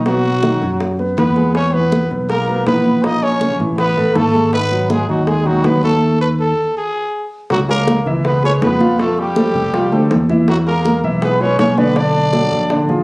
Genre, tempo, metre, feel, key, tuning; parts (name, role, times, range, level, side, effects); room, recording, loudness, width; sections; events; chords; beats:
Afro-Cuban jazz; 161 BPM; 4/4; straight; A4 = 444 Hz
growling trumpet; melody; 0.0-13.0 s; F#4 to D#5; -18 LUFS; equal
trombone with metal mute; second line; 0.0-13.0 s; F#3 to D#4; -23 LUFS; equal
picked electric bass; bass; 0.0-13.0 s; G#1 to F#2; -18 LUFS; equal
warm grand piano; accompaniment; 0.1-13.0 s; A#2 to E#5; -19 LUFS; equal
bongos; percussion; 0.1-13.0 s; -23 LUFS; left 2 dB
congas; percussion; 0.1-13.0 s; -19 LUFS; equal
light reverb; recorded on a phone in the room, club reverb, compression; -13 LUFS; side -24 dB against mid
0.0-7.5 A section; 7.5-13.0 B section
stop 6.0-7.5
0.1 B6; 1.6 E; 3.0 A#dim; 3.8 Asus2; 4.5 G#m7; 6.0 B7/D# (rootless); 6.8 N.C.; 7.5 C#m7; 9.0 Fadd9; 10.5 E; 12.0 Bm7
| 0.06 0.43 0.81 1.18 | 1.55 1.93 2.30 2.67 | 3.04 3.41 3.79 4.16 | 4.53 4.90 5.28 5.65 | 6.02 6.39 6.76 7.14 | 7.51 7.88 8.25 8.62 | 8.99 9.37 9.74 10.11 | 10.48 10.85 11.22 11.59 | 11.96 12.34 12.71